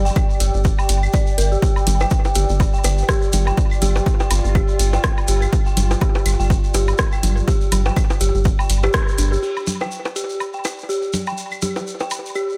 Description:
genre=minimal techno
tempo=123 BPM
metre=4/4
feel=swing 57% on 16ths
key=unclear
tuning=A4 = 440 Hz
part: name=rubbery square bass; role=bass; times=0.0-9.4 s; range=G1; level=-20 LUFS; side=equal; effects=sidechain pumping
part: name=warbly tape-like pad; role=texture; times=0.0-12.6 s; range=G4 to G5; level=-32 LUFS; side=equal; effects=chorus, built-in reverb, sidechain pumping
part: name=dark detuned synth bell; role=riff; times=0.1-12.4 s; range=D4 to G5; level=-28 LUFS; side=equal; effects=chorus, sidechain pumping, low-pass filter, analog delay
part: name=shekere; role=percussion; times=0.1-12.6 s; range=none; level=-33 LUFS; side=equal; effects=none
part: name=electronic kick drum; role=drums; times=0.2-9.1 s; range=none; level=-21 LUFS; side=equal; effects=none
part: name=claves, woodblock, congas and bongos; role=percussion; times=0.2-12.5 s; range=none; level=-29 LUFS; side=equal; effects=analog delay
part: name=punchy analog drum machine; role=drums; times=0.4-12.2 s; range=crash cymbal, hi-hat, rim click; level=-26 LUFS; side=equal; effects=low-pass filter on hats, low-pass filter on snare, low-pass filter on cymbals, low-pass filter on room, analog delay
part: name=swarming drone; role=texture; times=3.4-9.4 s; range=F4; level=-37 LUFS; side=equal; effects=built-in reverb, sidechain pumping
room=light reverb, digital ambience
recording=echo-heavy mix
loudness=-19 LUFS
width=mono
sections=0.0-9.4 A section; 9.4-12.6 B section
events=band accent 8.9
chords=0.0 G7(no3); 9.4 G5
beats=0.16 0.65 1.14 | 1.62 2.11 2.60 3.09 | 3.57 4.06 4.55 5.04 | 5.53 6.01 6.50 6.99 | 7.48 7.96 8.45 8.94 | 9.43 9.92 10.40 10.89 | 11.38 11.87 12.36

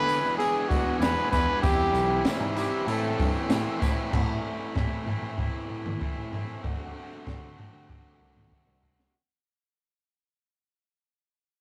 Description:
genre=indie rock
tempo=96 BPM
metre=4/4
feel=straight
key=A dorian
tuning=A4 = 440 Hz
part: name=breathy trumpet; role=melody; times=0.0-3.5 s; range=F#4 to B4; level=-29 LUFS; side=equal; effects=none
part: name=glockenspiel with rubber mallets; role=second line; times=0.0-3.5 s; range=D6 to G#6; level=-46 LUFS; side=equal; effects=none
part: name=biting overdriven guitar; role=riff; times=0.0-9.1 s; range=A2 to G#4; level=-35 LUFS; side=equal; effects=none
part: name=fuzz guitar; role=riff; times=0.0-4.1 s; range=E2 to E4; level=-35 LUFS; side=equal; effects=distortion
part: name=bell-like tine electric piano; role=bass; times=0.0-9.1 s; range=B1 to D3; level=-36 LUFS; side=equal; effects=none
part: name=compact cocktail drum kit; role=drums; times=0.1-9.1 s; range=crash cymbal, hi-hat, kick drum, snare drum, toms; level=-32 LUFS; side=equal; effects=none
part: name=tambourine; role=percussion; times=0.1-4.0 s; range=none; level=-51 LUFS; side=equal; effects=none
room=moderate small room reverb, RT60 0.5 s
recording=rough rehearsal-room recording, tube saturation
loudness=-27 LUFS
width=mono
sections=0.0-4.1 A section; 4.1-9.1 B section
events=fade-out 4.1-9.1; drum fill 8.5-9.1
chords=0.0 E7; 1.6 Cmaj7; 2.9 Am; 6.6 D5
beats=0.39 1.01 | 1.63 2.25 2.88 3.50 | 4.12 4.75 5.37 6.00 | 6.62 7.25 7.88 8.51

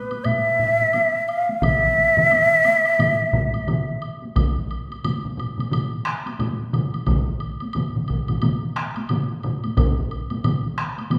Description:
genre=japanese traditional, taiko drum ensemble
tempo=88 BPM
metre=4/4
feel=swing 60% on 16ths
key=unclear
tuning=A4 = 440 Hz
part: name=breathy mellow shakuhachi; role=melody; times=0.0-4.0 s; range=B4 to F5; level=-20 LUFS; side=equal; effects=none
part: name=taiko ensemble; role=percussion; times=0.1-11.2 s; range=none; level=-34 LUFS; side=equal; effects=none
part: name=woodblock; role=percussion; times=0.1-11.2 s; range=none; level=-38 LUFS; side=equal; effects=none
part: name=taiko ensemble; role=percussion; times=0.3-11.2 s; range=none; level=-31 LUFS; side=equal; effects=none
part: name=taiko ensemble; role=percussion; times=1.6-11.2 s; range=none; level=-28 LUFS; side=equal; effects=none
part: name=taiko ensemble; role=percussion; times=1.6-10.0 s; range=none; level=-27 LUFS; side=equal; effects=none
room=wet large studio reverb, RT60 1.4 s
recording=band playing live in one room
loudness=-21 LUFS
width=mono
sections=0.0-4.4 A section; 4.4-11.2 B section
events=speeding up 0.0-11.2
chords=none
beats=0.25 0.94 | 1.63 2.31 3.00 3.68 | 4.36 5.04 5.72 6.40 | 7.08 7.76 8.43 9.10 | 9.78 10.45 11.12

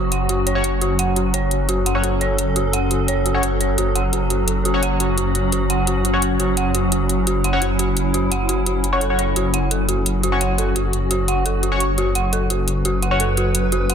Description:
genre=dark technical drum and bass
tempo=172 BPM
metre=4/4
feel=straight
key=F# minor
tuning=A4 = 440 Hz
part: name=swarming drone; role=sustained chords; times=0.0-13.9 s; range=F#3 to B4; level=-23 LUFS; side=equal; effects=built-in reverb
part: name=dark detuned synth bell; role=arpeggios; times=0.0-13.9 s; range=F#4 to F#5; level=-24 LUFS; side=right 2 dB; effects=chorus, low-pass filter, digital delay
part: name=wide detuned saw bass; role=bass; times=0.0-13.9 s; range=F#1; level=-21 LUFS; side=equal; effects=chorus, overdrive
part: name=electronic hi-hat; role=drums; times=0.1-13.9 s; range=none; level=-23 LUFS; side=equal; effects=soft clipping on snare
part: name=band-passed chord stab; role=stabs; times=0.6-13.2 s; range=C#4 to C#5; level=-25 LUFS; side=left 2 dB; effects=chorus, phaser, digital delay
room=light reverb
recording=dense, heavily limited modern master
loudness=-17 LUFS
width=side -8 dB against mid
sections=0.0-13.9 A section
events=none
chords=0.0 F#5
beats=0.29 0.64 | 0.99 1.34 1.69 2.04 | 2.38 2.73 3.08 3.43 | 3.78 4.13 4.48 4.83 | 5.18 5.53 5.87 6.22 | 6.57 6.92 7.27 7.62 | 7.97 8.32 8.66 9.01 | 9.36 9.71 10.06 10.41 | 10.76 11.11 11.46 11.80 | 12.15 12.50 12.85 13.20 | 13.55 13.90

